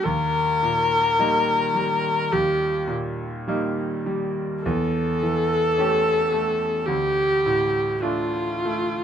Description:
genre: classical, romantic duo for viola and grand piano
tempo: 52 BPM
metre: 4/4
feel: rubato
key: unclear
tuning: A4 = 436 Hz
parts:
  - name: warm viola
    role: melody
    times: 0.0-9.0 s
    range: F4 to Bb4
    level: -21 LUFS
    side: left 2 dB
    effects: none
  - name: bright concert grand piano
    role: accompaniment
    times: 0.0-9.0 s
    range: D2 to G4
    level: -25 LUFS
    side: right 2 dB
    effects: none
room: light reverb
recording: close, detailed microphones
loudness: -20 LUFS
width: side -8 dB against mid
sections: 0.0-9.0 A section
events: none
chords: 0.0 Eb; 4.6 A7/E; 6.9 Dm

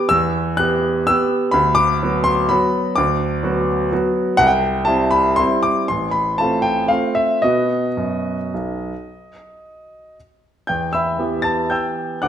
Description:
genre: classical, piano waltz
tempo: 106-134 BPM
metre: 3/4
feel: rubato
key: E minor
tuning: A4 = 441 Hz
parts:
  - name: clear concert grand piano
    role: solo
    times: 0.0-12.3 s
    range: A1 to A6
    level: -16 LUFS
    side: equal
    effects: none
room: wet recital hall reverb, RT60 1.3 s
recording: none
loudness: -16 LUFS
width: side -9 dB against mid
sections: 0.0-10.7 A section; 10.7-12.3 B section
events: none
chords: 0.0 Em; 1.5 Bm/D; 4.4 C; 5.9 F/A; 7.4 B; 10.7 Em

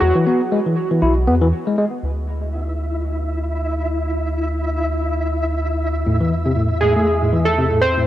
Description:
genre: IDM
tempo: 119 BPM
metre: 4/4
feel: swing 56% on 16ths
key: D lydian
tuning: A4 = 440 Hz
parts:
  - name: warbly lo-fi synth keys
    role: melody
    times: 0.0-1.5, 6.8-8.1 s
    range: F#4 to C5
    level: -19 LUFS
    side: right 2 dB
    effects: chorus, tape echo
  - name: rubbery square bass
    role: bass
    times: 0.0-8.1 s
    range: B1 to E2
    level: -21 LUFS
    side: equal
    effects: none
  - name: bright tine electric piano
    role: arpeggios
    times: 0.2-1.8, 6.1-8.1 s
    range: A2 to E4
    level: -19 LUFS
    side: left 2 dB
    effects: medium stereo tremolo, analog delay
  - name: flickering grainy texture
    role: texture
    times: 2.5-8.1 s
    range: E4 to E5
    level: -24 LUFS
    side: equal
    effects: built-in reverb
room: digital ambience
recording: dry, gritty hardware recording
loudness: -17 LUFS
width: side -13 dB against mid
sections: 0.0-2.0 A section; 2.0-8.1 B section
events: break 1.5-2.0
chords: 0.0 Esus2; 2.0 Dsus2; 6.1 Am/E

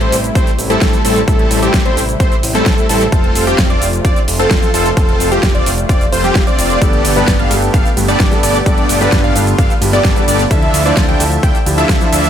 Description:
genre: EDM, festival progressive house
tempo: 130 BPM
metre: 4/4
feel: straight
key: unclear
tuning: A4 = 438 Hz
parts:
  - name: lush unison pad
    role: sustained chords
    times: 0.0-12.3 s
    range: C3 to E5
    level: -22 LUFS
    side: equal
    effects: chorus, sidechain pumping
  - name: wide unison lead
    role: arpeggios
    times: 0.0-12.3 s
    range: G4 to G5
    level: -19 LUFS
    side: equal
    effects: cassette tape, sidechain pumping, ping-pong delay
  - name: dense compressed supersaw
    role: riff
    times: 0.0-12.3 s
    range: G3 to G5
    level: -17 LUFS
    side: equal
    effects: sidechain pumping, ping-pong delay
  - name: fat analog bass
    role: bass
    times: 0.0-12.3 s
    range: F1 to D2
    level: -19 LUFS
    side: equal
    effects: sidechain pumping
  - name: big-room dance drum kit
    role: drums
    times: 0.0-12.3 s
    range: cabasa, hi-hat, ride cymbal, snare drum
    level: -20 LUFS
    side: right 1 dB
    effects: overdrive
  - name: electronic kick drum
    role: drums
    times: 0.4-12.0 s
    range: none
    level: -14 LUFS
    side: equal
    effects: overdrive
  - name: warm concert grand piano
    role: accompaniment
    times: 6.8-12.2 s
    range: G2 to D5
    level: -19 LUFS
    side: right 1 dB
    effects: sidechain pumping, ping-pong delay
room: digital ambience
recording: none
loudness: -10 LUFS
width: side -9 dB against mid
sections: 0.0-12.3 A section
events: none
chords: 0.0 Am7; 3.1 F; 6.8 Gadd9; 10.5 Dmadd9

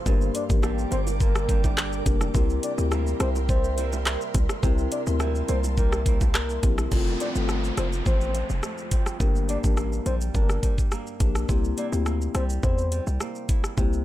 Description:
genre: dancehall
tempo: 105 BPM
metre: 4/4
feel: straight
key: unclear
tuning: A4 = 440 Hz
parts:
  - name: ethereal airy pad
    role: sustained chords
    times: 0.0-6.9 s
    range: Bb4 to D6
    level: -35 LUFS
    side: right 4 dB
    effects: ensemble chorus, built-in reverb, sidechain pumping
  - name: flamenco guitar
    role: arpeggios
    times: 0.0-14.0 s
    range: F2 to E4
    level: -36 LUFS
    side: right 9 dB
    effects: none
  - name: marimba with soft mallets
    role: accompaniment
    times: 0.1-14.0 s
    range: A3 to Bb4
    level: -32 LUFS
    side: left 7 dB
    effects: none
  - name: hard-hitting 808-style bass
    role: bass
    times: 0.1-14.0 s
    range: F1 to E2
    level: -26 LUFS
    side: equal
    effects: none
  - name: afro-pop drum kit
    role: drums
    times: 0.1-14.0 s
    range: crash cymbal, handclaps, hi-hat, kick drum, rim click, shaker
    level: -24 LUFS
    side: equal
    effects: none
  - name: soft octave-layered synth lead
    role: melody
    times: 0.3-13.0 s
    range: Bb4 to D5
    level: -33 LUFS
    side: left 2 dB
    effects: chorus, tremolo, ping-pong delay
  - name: bongos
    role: percussion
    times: 0.6-6.9 s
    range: none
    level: -39 LUFS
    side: right 7 dB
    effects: none
  - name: downlifter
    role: sound effects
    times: 6.9-11.5 s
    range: none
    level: -36 LUFS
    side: equal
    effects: none
room: digital ambience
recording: none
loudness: -22 LUFS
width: side -14 dB against mid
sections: 0.0-6.9 A section; 6.9-14.0 B section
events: none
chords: 0.1 Gm; 2.3 C7; 6.9 F; 9.2 Gm; 11.5 C7

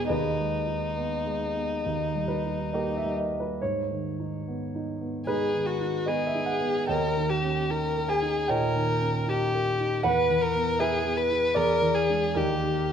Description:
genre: classical, romantic duo for violin and grand piano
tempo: 67-80 BPM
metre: 4/4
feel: rubato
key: G# minor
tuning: A4 = 436 Hz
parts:
  - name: warm violin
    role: melody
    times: 0.0-12.9 s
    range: D#4 to B4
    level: -27 LUFS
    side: left 2 dB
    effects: none
  - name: warm grand piano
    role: accompaniment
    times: 0.0-12.9 s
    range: D#2 to G#5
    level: -27 LUFS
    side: right 2 dB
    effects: none
room: moderate recital hall reverb, RT60 1.6 s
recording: none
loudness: -24 LUFS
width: side -8 dB against mid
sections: 0.0-12.9 A section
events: none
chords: 0.1 G#m/D#; 1.8 D#; 3.6 G#m; 6.9 D#7; 10.0 E; 11.6 E7; 12.4 D#

